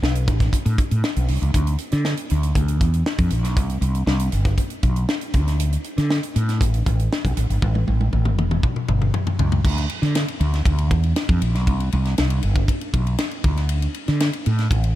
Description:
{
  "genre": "polished 1980s jazz-funk pop",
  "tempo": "118 BPM",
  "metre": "4/4",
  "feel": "straight",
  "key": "C major",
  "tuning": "A4 = 438 Hz",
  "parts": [
    { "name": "mellow fretless electric bass", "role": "bass", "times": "0.0-14.9 s", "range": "E1 to D3", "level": "-19 LUFS", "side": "equal", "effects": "wide subtle chorus" },
    { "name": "tight funk drum kit", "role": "drums", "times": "0.0-15.0 s", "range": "crash cymbal, hi-hat, kick drum, ride cymbal, snare drum, toms", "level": "-22 LUFS", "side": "equal", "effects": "none" }
  ],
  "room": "light reverb",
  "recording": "none",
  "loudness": "-18 LUFS",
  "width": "side -14 dB against mid",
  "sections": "0.0-9.6 A section; 9.6-15.0 A section",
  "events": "drum fill 7.6-9.6",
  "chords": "none",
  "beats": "0.02 0.53 1.03 | 1.54 2.05 2.56 3.06 | 3.57 4.07 4.58 5.09 | 5.59 6.10 6.61 7.11 | 7.62 8.13 8.63 9.14 | 9.65 10.15 10.66 11.17 | 11.67 12.18 12.69 13.19 | 13.70 14.20 14.71"
}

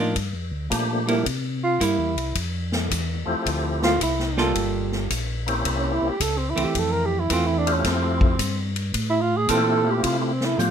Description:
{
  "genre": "soul jazz organ trio",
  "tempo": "109 BPM",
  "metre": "4/4",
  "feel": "swing 67% on 8ths",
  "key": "F major",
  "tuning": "A4 = 440 Hz",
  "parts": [
    { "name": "breathy tenor saxophone", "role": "melody", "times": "0.0-10.7 s", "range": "A3 to Bb4", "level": "-24 LUFS", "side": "right 2 dB", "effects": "none" },
    { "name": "archtop guitar, miked and amplified", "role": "accompaniment", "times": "0.0-9.8 s", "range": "E3 to A4", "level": "-25 LUFS", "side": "right 3 dB", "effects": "none" },
    { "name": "mellow tonewheel organ", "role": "bass", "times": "0.0-10.7 s", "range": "G1 to C3", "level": "-26 LUFS", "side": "left 1 dB", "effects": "chorus vibrato, slow rotary speaker" },
    { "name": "swinging big-band drum kit", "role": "drums", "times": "0.2-10.7 s", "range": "hi-hat, kick drum, ride cymbal, snare drum, toms", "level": "-27 LUFS", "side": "left 2 dB", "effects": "none" },
    { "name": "percussive tonewheel organ", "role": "melody", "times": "0.7-10.7 s", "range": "F3 to G4", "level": "-25 LUFS", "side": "left 2 dB", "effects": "slow rotary speaker, overdrive, chorus vibrato" }
  ],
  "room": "light reverb",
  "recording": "minimal, uncompressed stereo recording",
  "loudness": "-21 LUFS",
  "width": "side -8 dB against mid",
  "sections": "0.0-10.7 A section",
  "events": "tenor saxophone solo 0.0-10.7",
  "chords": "0.2 Gm7; 1.3 C7; 2.4 Fmaj7; 4.6 Gm9; 5.6 C7b9; 6.7 Fmaj7",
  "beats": "| 0.17 0.71 1.26 1.81 | 2.36 2.91 3.46 4.00 | 4.55 5.10 5.65 6.20 | 6.75 7.29 7.84 8.39 | 8.94 9.48 10.03 10.58"
}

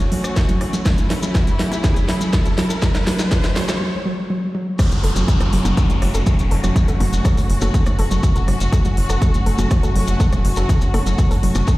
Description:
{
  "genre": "melodic techno",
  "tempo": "122 BPM",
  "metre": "4/4",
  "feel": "straight",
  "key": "F# minor",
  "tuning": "A4 = 439 Hz",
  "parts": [
    { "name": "rich studio string section", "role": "sustained chords", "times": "0.0-11.8 s", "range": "A3 to F#4", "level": "-26 LUFS", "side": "left 1 dB", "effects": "sidechain pumping" },
    { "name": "soft round pluck", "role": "arpeggios", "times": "0.0-11.8 s", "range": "F#3 to A4", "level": "-24 LUFS", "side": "right 1 dB", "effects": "chorus, sidechain pumping, tape echo" },
    { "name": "tight sequencer bass", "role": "bass", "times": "0.0-11.6 s", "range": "E1 to F#1", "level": "-20 LUFS", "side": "equal", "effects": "sidechain pumping, high-pass filter" },
    { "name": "riser and downlifter", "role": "sound effects", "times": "0.0-8.7 s", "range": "none", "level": "-30 LUFS", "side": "equal", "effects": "none" },
    { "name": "techno drum kit", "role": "drums", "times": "0.1-11.8 s", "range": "crash cymbal, hi-hat, percussion blips, rim click, snare drum", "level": "-27 LUFS", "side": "left 1 dB", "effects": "overdrive, high-pass filter on snare, high-pass filter on hats, high-pass filter on perc, high-pass filter on cymbals" },
    { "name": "maracas", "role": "percussion", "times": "0.2-11.8 s", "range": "none", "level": "-33 LUFS", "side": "left 3 dB", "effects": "none" },
    { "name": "electronic kick drum", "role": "drums", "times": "0.4-11.8 s", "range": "none", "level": "-17 LUFS", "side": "equal", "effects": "overdrive" }
  ],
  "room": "light reverb",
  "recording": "played on a big sound system in a bare room, large studio reverb",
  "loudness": "-15 LUFS",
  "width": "side -18 dB against mid",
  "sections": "0.0-4.8 A section; 4.8-11.8 B section",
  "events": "build-up 0.0-4.8; drum fill 0.0-3.8; riser 0.0-3.8; filter sweep on synth arpeggio sound 0.0-4.8; break 3.8-4.8; drop 4.8-11.8",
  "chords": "0.0 F#m",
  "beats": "0.36 | 0.86 1.35 1.84 2.33 | 2.82 3.31 3.81 4.30 | 4.79 5.28 5.77 6.27 | 6.76 7.25 7.74 8.23 | 8.72 9.22 9.71 10.20 | 10.69 11.18 11.68"
}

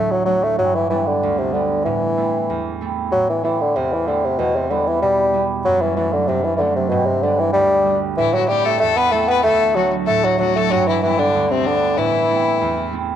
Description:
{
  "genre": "celtic folk, Celtic reel",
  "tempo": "190 BPM",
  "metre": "4/4",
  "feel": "swing 53% on 8ths",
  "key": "A dorian",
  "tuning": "A4 = 440 Hz",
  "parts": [
    { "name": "warm bassoon", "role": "melody", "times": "0.0-12.9 s", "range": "B2 to B3", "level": "-17 LUFS", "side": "left 1 dB", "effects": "none" },
    { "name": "concert harp", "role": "accompaniment", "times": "0.0-13.2 s", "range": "D2 to E4", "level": "-23 LUFS", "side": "right 7 dB", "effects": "none" },
    { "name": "clear fiddle", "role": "second line", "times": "8.2-12.9 s", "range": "C4 to B4", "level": "-22 LUFS", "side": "left 9 dB", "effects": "none" }
  ],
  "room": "wet spring reverb, RT60 2.1 s",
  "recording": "1960s-style stereo with parts hard left and right",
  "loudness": "-16 LUFS",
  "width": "side -10 dB against mid",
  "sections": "0.0-3.1 A section; 3.1-13.2 A section",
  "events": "none",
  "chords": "0.0 D; 0.6 G; 1.9 Am; 4.4 Em; 5.7 D/F#; 6.9 G; 8.2 Am; 9.4 D; 10.7 G; 12.0 Am",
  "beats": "0.27 | 0.59 0.91 1.22 1.54 | 1.86 2.17 2.49 2.81 | 3.12 3.44 3.76 4.07 | 4.39 4.71 5.02 5.34 | 5.65 5.97 6.29 6.60 | 6.92 7.23 7.55 7.87 | 8.18 8.50 8.81 9.13 | 9.45 9.76 10.08 10.39 | 10.71 11.03 11.34 11.66 | 11.97 12.29 12.60 12.92"
}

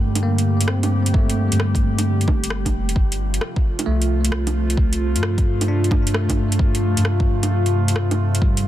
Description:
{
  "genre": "future garage",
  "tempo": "132 BPM",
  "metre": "4/4",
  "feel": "swing 67% on 16ths",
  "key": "unclear",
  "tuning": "A4 = 439 Hz",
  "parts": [
    { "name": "bell-like tine electric piano", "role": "accompaniment", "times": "0.0-8.7 s", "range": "G3 to D4", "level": "-26 LUFS", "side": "right 2 dB", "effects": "medium stereo tremolo, sidechain pumping, digital delay" },
    { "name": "warbly tape-like pad", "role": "sustained chords", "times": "0.0-8.7 s", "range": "C3 to G4", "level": "-26 LUFS", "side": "left 2 dB", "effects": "chorus, built-in reverb, phaser, vintage 12-bit sampler grit, sidechain pumping" },
    { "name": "soft dub sub bass", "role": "bass", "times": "0.0-8.7 s", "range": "F1 to G2", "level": "-20 LUFS", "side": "equal", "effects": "tube saturation, sidechain pumping" },
    { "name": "deep house drum kit", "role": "drums", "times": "0.2-8.6 s", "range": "bongos, hi-hat, rim click", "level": "-26 LUFS", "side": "right 2 dB", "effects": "overdrive" },
    { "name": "electronic kick drum", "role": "drums", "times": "1.1-8.5 s", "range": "none", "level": "-19 LUFS", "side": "equal", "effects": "overdrive" }
  ],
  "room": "little or no reverb",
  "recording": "dense, heavily limited modern master",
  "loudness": "-17 LUFS",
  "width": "side -13 dB against mid",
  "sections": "0.0-8.7 A section",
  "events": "none",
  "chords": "0.0 Gm; 3.0 F/G",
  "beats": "0.23 0.69 | 1.14 1.60 2.05 2.51 | 2.96 3.42 3.87 4.32 | 4.78 5.23 5.69 6.14 | 6.60 7.05 7.51 7.96 | 8.41"
}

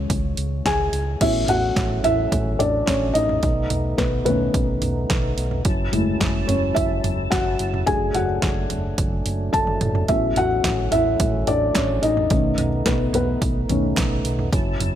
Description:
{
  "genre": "piano-driven pop",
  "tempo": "108 BPM",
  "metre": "4/4",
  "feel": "straight",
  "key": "unclear",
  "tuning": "A4 = 439 Hz",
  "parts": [
    { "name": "felt-muted upright piano", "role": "accompaniment", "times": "0.0-14.6 s", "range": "C#3 to A5", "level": "-22 LUFS", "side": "left 1 dB", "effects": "none" },
    { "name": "hollow-body short-scale fingered electric bass", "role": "bass", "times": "0.0-15.0 s", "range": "F#1 to C#2", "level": "-25 LUFS", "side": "equal", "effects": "none" },
    { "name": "punchy analog drum machine", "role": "drums", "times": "0.1-14.9 s", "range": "crash cymbal, hi-hat, kick drum, snare drum, toms", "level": "-24 LUFS", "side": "right 1 dB", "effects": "none" },
    { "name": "tonewheel organ", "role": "sustained chords", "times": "1.2-15.0 s", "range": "F#3 to A5", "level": "-29 LUFS", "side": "right 1 dB", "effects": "overdrive, chorus vibrato, slow rotary speaker" },
    { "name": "group handclap", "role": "percussion", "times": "10.6-14.1 s", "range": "none", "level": "-34 LUFS", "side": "right 5 dB", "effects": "none" }
  ],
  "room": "light reverb",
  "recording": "none",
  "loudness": "-18 LUFS",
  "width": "side -10 dB against mid",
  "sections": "0.0-1.2 A section; 1.2-15.0 B section",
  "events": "felt piano solo 1.2-15.0; drum fill 9.5-10.1",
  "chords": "0.0 C#; 1.2 A6; 3.4 B7; 5.7 F#m7; 7.9 D/F#; 10.1 A6; 12.3 B7",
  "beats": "0.10 0.66 | 1.21 1.77 2.32 2.88 | 3.43 3.99 4.54 5.10 | 5.65 6.21 6.76 7.32 | 7.87 8.43 8.98 9.54 | 10.09 10.65 11.20 11.76 | 12.31 12.86 13.42 13.97 | 14.53"
}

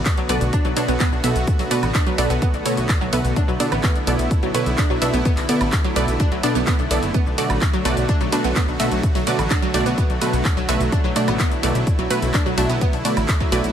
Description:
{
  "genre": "progressive house",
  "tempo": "127 BPM",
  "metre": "4/4",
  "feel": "straight",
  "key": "B minor",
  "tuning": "A4 = 440 Hz",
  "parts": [
    { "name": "supersaw pad", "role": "sustained chords", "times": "0.0-13.7 s", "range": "D3 to F#4", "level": "-26 LUFS", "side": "right 1 dB", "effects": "sidechain pumping" },
    { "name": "plucky analog bass", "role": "bass", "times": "0.0-13.7 s", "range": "F#1 to B1", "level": "-24 LUFS", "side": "equal", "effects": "sidechain pumping" },
    { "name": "deep house drum kit", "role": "drums", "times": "0.1-13.7 s", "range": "cabasa, handclaps, hi-hat, ride cymbal, woodblock", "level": "-27 LUFS", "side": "equal", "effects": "sidechain pumping on hats, sidechain pumping on perc, sidechain pumping on cymbals" },
    { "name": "electronic kick drum", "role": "drums", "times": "0.1-13.5 s", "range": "none", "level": "-20 LUFS", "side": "equal", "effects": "overdrive" },
    { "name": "glassy wavetable pluck", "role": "arpeggios", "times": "0.2-13.6 s", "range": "F#3 to B5", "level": "-26 LUFS", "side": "right 1 dB", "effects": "chorus, sidechain pumping, ping-pong delay" },
    { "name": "wide unison pluck", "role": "stabs", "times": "0.3-13.7 s", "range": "B2 to E5", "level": "-24 LUFS", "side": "right 1 dB", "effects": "sidechain pumping, ping-pong delay" }
  ],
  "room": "light reverb, digital ambience",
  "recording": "none",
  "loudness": "-17 LUFS",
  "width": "side -9 dB against mid",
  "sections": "0.0-13.7 A section",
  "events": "none",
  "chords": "0.0 Bm7",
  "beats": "0.06 0.53 1.00 | 1.48 1.95 2.42 2.89 | 3.37 3.84 4.31 4.78 | 5.25 5.73 6.20 6.67 | 7.14 7.62 8.09 8.56 | 9.03 9.51 9.98 10.45 | 10.92 11.40 11.87 12.34 | 12.81 13.29"
}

